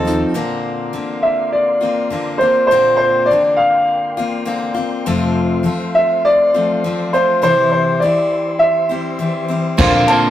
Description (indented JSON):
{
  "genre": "folk rock and heartland rock",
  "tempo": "102 BPM",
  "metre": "4/4",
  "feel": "straight",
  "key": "unclear",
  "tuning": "A4 = 441 Hz",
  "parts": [
    { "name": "picked steel-string acoustic guitar", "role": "accompaniment", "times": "0.0-10.3 s", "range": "F2 to A4", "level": "-20 LUFS", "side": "left 3 dB", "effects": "none" },
    { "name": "mellow tonewheel organ", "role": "sustained chords", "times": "0.0-10.3 s", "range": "G4 to C6", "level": "-27 LUFS", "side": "equal", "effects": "slow rotary speaker" },
    { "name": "electric guitar at the edge of break-up", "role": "riff", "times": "0.0-0.4, 9.8-10.3 s", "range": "Bb2 to A4", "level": "-16 LUFS", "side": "right 3 dB", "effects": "none" },
    { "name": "picked electric bass", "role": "bass", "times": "0.0-0.2, 9.8-10.0 s", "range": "Bb1 to Eb2", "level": "-24 LUFS", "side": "right 1 dB", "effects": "none" },
    { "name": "overdriven reed electric piano", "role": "accompaniment", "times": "0.1-0.3, 9.8-10.3 s", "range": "D4 to C5", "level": "-21 LUFS", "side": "left 3 dB", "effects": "phaser" },
    { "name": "unplugged drum kit", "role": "drums", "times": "0.1-0.2, 9.8-10.2 s", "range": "crash cymbal, hi-hat, kick drum, ride cymbal", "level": "-18 LUFS", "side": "right 1 dB", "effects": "none" },
    { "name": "warm concert grand piano", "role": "melody", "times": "1.2-10.3 s", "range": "C5 to A5", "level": "-14 LUFS", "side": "equal", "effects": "none" }
  ],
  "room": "wet studio reverb, RT60 0.6 s",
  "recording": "rough rehearsal-room recording",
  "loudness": "-13 LUFS",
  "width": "side -12 dB against mid",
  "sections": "0.4-10.3 A section",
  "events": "none",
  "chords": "0.4 Bbadd9; 5.1 F; 7.4 C; 9.8 Bbadd9"
}